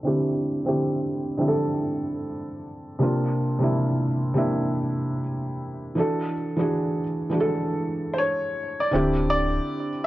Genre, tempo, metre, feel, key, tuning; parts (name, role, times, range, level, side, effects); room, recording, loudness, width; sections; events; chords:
hip hop; 81 BPM; 4/4; swing 66% on 16ths; A4 = 439 Hz
felt-muted upright piano; accompaniment; 0.0-10.1 s; C3 to A4; -23 LUFS; right 1 dB; cassette tape, low-pass filter
bright upright piano; melody; 8.1-10.1 s; C5 to D5; -25 LUFS; left 1 dB; low-pass filter
warbly tape-like pad; sustained chords; 9.7-10.1 s; C4 to G4; -39 LUFS; right 4 dB; chorus, built-in reverb, low-pass filter
sub bass with octave; bass; 8.9-9.6 s; D1; -27 LUFS; equal
moderate spring reverb, RT60 2.2 s; -22 LUFS; side -16 dB against mid
0.0-8.9 A section; 8.9-10.1 B section
filter sweep on felt piano 0.0-8.9
0.0 D9sus4; 3.0 C9sus4; 6.0 E9sus4; 8.9 D9sus4